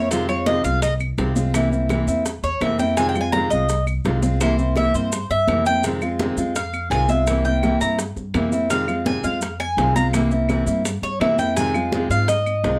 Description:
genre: latin, Cuban son and guajira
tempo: 168 BPM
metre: 4/4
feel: straight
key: F minor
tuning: A4 = 437 Hz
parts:
  - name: fingerpicked steel-string acoustic guitar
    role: accompaniment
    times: 0.0-12.8 s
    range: C3 to F4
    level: -24 LUFS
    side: equal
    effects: none
  - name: Cuban tres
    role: arpeggios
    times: 0.0-12.8 s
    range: C5 to Bb5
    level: -24 LUFS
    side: equal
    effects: none
  - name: upright bass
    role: bass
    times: 0.0-12.8 s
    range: C2 to Ab2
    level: -27 LUFS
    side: equal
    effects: none
  - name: bongos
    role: percussion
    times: 0.1-12.8 s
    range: none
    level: -33 LUFS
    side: equal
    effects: none
  - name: congas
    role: percussion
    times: 0.1-12.8 s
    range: none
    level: -31 LUFS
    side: equal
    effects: none
  - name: maracas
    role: percussion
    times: 0.1-12.8 s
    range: none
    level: -37 LUFS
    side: equal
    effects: none
  - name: claves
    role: percussion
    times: 0.3-12.6 s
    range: none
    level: -34 LUFS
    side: equal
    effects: none
room: moderate studio ambience, RT60 0.4 s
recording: none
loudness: -21 LUFS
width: mono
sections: 0.0-12.8 A section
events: Cuban tres solo 0.0-12.8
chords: 0.1 Fm7; 1.5 C7; 3.0 Fm7; 4.4 C7; 5.8 Fm7; 7.3 C7; 8.7 Fm7; 10.1 C7; 11.6 Fm7

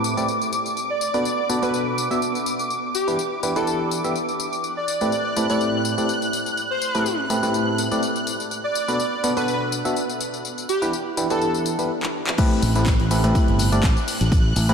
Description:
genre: piano house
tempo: 124 BPM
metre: 4/4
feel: swing 54% on 16ths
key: A dorian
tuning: A4 = 440 Hz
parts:
  - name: analog string pad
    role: sustained chords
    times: 0.0-14.7 s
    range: D6 to F#6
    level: -29 LUFS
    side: equal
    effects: ensemble chorus, phaser, sidechain pumping
  - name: barking FM electric piano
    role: riff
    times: 0.0-14.7 s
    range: A2 to E5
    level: -23 LUFS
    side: equal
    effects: chorus, sidechain pumping, analog delay
  - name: house drum kit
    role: drums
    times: 0.0-14.7 s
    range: crash cymbal, handclaps, hi-hat, tambourine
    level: -29 LUFS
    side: left 5 dB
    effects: overdrive
  - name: airy dreamy lead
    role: melody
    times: 0.9-11.5 s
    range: G4 to D5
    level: -27 LUFS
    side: right 1 dB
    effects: chorus, analog delay
  - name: electronic kick drum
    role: drums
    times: 12.4-14.4 s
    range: none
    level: -19 LUFS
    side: equal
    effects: overdrive
  - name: oversized low-tuned drum kit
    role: drums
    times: 12.4-14.7 s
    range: hi-hat, snare drum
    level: -38 LUFS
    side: left 3 dB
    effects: none
  - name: fingered electric bass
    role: bass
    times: 12.6-14.7 s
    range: G1 to A1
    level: -20 LUFS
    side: equal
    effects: sidechain pumping
room: wet church reverb, RT60 3.8 s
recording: dreamy mix soaked in reverb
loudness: -20 LUFS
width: side -6 dB against mid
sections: 0.0-12.4 A section; 12.4-14.7 B section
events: stop 11.9-12.4; drum fill 12.0-12.4; drop 12.4-14.7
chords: 0.0 Am9; 0.8 Bm7; 2.7 Em7; 4.6 Am9; 8.5 Bm7; 10.4 Em7; 12.4 Am9

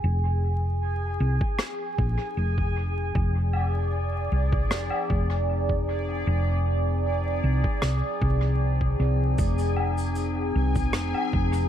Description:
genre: ambient dub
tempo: 77 BPM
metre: 4/4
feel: straight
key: F dorian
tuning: A4 = 435 Hz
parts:
  - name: warbly tape-like pad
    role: sustained chords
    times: 0.0-11.7 s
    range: F3 to Ab5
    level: -33 LUFS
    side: left 2 dB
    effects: chorus, built-in reverb
  - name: hollow-body short-scale fingered electric bass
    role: bass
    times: 0.0-11.7 s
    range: F1 to C2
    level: -24 LUFS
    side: equal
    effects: none
  - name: bubbling stepped-filter texture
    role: texture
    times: 0.0-11.7 s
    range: Ab4 to Ab5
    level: -31 LUFS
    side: right 1 dB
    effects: chorus, built-in reverb
  - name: electronic kick drum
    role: drums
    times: 1.4-11.5 s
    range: none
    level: -27 LUFS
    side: equal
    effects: none
  - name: rim click, woodblock and shaker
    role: drums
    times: 1.6-11.7 s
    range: none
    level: -32 LUFS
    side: left 2 dB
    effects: dub echo
room: studio reverb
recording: vinyl crackle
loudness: -23 LUFS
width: side -10 dB against mid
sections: 0.0-11.7 A section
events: fade-in on ambient pad 0.0-11.7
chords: 0.0 Fm7

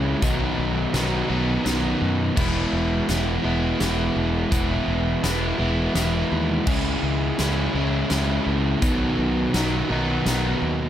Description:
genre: post-rock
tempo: 84 BPM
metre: 3/4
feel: straight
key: E major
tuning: A4 = 440 Hz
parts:
  - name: crunchy overdriven guitar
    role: riff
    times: 0.0-10.9 s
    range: B2 to E4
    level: -22 LUFS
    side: equal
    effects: none
  - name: growling fingered electric bass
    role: bass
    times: 0.0-10.9 s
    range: E1 to F#2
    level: -26 LUFS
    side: equal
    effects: overdrive
  - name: huge arena drum kit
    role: drums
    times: 0.2-10.4 s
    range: crash cymbal, hi-hat, kick drum, snare drum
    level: -28 LUFS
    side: equal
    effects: none
room: light reverb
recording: none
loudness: -20 LUFS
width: side -11 dB against mid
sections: 0.0-10.9 A section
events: none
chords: 0.2 B; 2.4 E; 6.7 C#m; 8.8 B

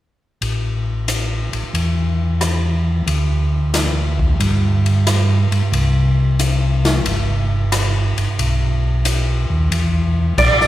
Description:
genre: soul jazz organ trio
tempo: 90 BPM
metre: 4/4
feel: swing 68% on 8ths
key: A minor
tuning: A4 = 444 Hz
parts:
  - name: mellow tonewheel organ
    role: bass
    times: 0.4-10.7 s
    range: G1 to G2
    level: -16 LUFS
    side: equal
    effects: slow rotary speaker
  - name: swinging big-band drum kit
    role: drums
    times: 0.4-10.7 s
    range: crash cymbal, hi-hat, kick drum, ride cymbal, rim click, snare drum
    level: -22 LUFS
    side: left 2 dB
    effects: none
  - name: percussive tonewheel organ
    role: melody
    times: 10.4-10.7 s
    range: D5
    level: -12 LUFS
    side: right 2 dB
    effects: slow rotary speaker, overdrive, chorus vibrato
room: wet church reverb, RT60 3.5 s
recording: recorded in a church or concert hall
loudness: -15 LUFS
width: side -14 dB against mid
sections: 0.4-10.7 A section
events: none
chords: 0.4 A5; 3.1 N.C.; 5.7 C5; 8.4 B; 9.7 Bb

